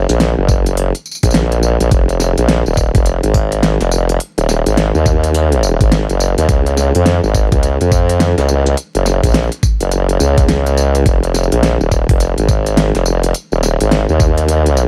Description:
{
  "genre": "glitch hop",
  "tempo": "105 BPM",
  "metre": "4/4",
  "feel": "swing 62% on 16ths",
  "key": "F phrygian",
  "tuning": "A4 = 441 Hz",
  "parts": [
    { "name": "formant-sweep wobble bass", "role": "bass", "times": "0.0-14.9 s", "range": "Eb1 to F2", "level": "-15 LUFS", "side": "equal", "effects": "chorus, overdrive" },
    { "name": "pop drum kit", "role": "drums", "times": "0.1-14.9 s", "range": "hi-hat, snare drum, tambourine", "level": "-21 LUFS", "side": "equal", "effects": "small room reverb" },
    { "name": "electronic kick drum", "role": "drums", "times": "0.5-14.3 s", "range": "none", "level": "-16 LUFS", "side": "equal", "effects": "small room reverb" }
  ],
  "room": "little or no reverb",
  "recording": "vinyl crackle",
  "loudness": "-14 LUFS",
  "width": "mono",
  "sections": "0.0-14.9 A section",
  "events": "kick drops out 10.5-11.1",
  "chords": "none",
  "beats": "0.20 0.77 1.34 | 1.92 2.49 3.06 3.63 | 4.20 4.77 5.34 5.92 | 6.49 7.06 7.63 8.20 | 8.77 9.34 9.91 10.49 | 11.06 11.63 12.20 12.77 | 13.34 13.91 14.49"
}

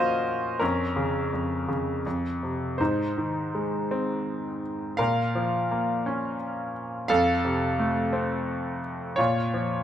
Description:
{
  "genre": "classical, lyrical solo piano",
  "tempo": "84 BPM",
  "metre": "3/4",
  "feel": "rubato",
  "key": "Bb minor",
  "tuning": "A4 = 439 Hz",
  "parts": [
    { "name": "bright concert grand piano", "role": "solo", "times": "0.0-9.8 s", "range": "F2 to Gb5", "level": "-24 LUFS", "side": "equal", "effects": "none" }
  ],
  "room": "light reverb",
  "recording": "close, detailed microphones",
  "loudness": "-25 LUFS",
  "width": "side -10 dB against mid",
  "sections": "0.0-9.8 A section",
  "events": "none",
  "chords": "0.0 Bbm; 0.6 Bbm/F; 2.1 F5; 2.8 Ab; 5.0 Bbm; 7.1 F; 9.2 Bbm",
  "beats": "| 0.60 1.32 2.05 | 2.80 3.54 4.27 | 4.99 5.70 6.40 | 7.10 7.79 8.48 | 9.19"
}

